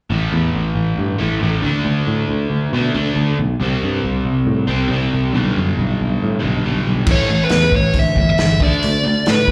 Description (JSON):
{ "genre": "classic rock", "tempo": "138 BPM", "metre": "4/4", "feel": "straight", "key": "unclear", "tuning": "A4 = 436 Hz", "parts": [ { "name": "overdriven semi-hollow guitar", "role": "riff", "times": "0.1-9.5 s", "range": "G2 to D4", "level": "-22 LUFS", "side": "equal", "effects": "none" }, { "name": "picked electric bass", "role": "bass", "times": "0.1-9.5 s", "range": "G1 to B2", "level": "-21 LUFS", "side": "equal", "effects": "none" }, { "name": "dark smooth lead guitar", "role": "melody", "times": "7.1-9.5 s", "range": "B4 to E5", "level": "-20 LUFS", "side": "equal", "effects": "overdrive, tape echo" }, { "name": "vintage drum kit", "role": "drums", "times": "7.1-9.5 s", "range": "crash cymbal, hi-hat, kick drum, snare drum", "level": "-21 LUFS", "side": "equal", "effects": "none" } ], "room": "light reverb", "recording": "live gig heard through the venue's PA, club reverb", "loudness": "-17 LUFS", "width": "mono", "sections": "0.1-7.1 A section; 7.1-9.5 B section", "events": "none", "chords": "0.1 A5; 1.6 D5; 3.6 C5; 5.3 G/B; 7.1 A5; 8.6 D5" }